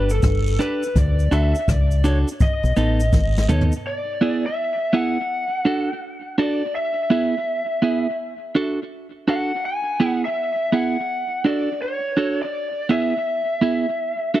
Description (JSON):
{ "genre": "roots reggae", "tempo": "83 BPM", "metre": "4/4", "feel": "swing 64% on 16ths", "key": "unclear", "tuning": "A4 = 440 Hz", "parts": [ { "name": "lead guitar through a small cranked amp", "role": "melody", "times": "0.0-14.4 s", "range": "A4 to G#5", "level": "-24 LUFS", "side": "left 1 dB", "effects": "overdrive, tape echo" }, { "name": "clean electric guitar", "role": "accompaniment", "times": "0.0-14.4 s", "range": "B3 to B4", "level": "-22 LUFS", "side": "right 3 dB", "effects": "tape echo" }, { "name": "deep dub fingered electric bass", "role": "bass", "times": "0.0-3.7 s", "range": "G1 to D#2", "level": "-18 LUFS", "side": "left 1 dB", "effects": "none" }, { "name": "jazz brush drum kit", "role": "drums", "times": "0.1-3.8 s", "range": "hi-hat, kick drum, rim click, snare drum, toms", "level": "-20 LUFS", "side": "equal", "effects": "none" }, { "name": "cabasa and guiro", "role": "percussion", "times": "0.1-3.8 s", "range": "none", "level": "-40 LUFS", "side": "right 3 dB", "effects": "none" } ], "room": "little or no reverb", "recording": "dry, close 1970s-style studio recording", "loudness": "-19 LUFS", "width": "side -14 dB against mid", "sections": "0.0-3.9 A section; 3.9-14.4 B section", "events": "drum fill 3.1-3.9", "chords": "0.0 G; 1.0 D; 2.4 B7; 3.9 E; 5.3 D; 6.7 E; 8.2 D; 9.6 E; 11.1 D; 12.5 E", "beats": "0.23 | 0.95 1.68 2.40 3.13 | 3.85 4.57 5.30 6.02 | 6.74 7.47 8.19 8.91 | 9.64 10.36 11.09 11.81 | 12.53 13.26 13.98" }